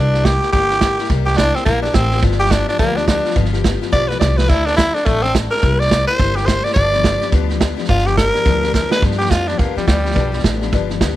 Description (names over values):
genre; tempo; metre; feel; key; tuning
rockabilly; 212 BPM; 4/4; swing 60% on 8ths; G mixolydian; A4 = 441 Hz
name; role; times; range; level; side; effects
growling tenor saxophone; melody; 0.0-10.4 s; G3 to D5; -18 LUFS; equal; none
picked steel-string acoustic guitar; accompaniment; 0.0-11.2 s; G2 to A4; -23 LUFS; left 10 dB; none
upright bass; bass; 0.0-11.2 s; G1 to G2; -19 LUFS; equal; none
vintage drum kit; drums; 0.1-11.1 s; crash cymbal, hi-hat, kick drum, snare drum; -18 LUFS; right 2 dB; none
room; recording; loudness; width
small room ambience; 1960s-style stereo; -13 LUFS; side -14 dB against mid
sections
0.0-9.0 A section; 9.0-11.2 B section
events
tenor saxophone solo 0.0-9.0; drum fill 4.3, 8.7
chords
0.0 C7; 2.2 G7; 4.5 D7; 5.6 C7; 6.8 G7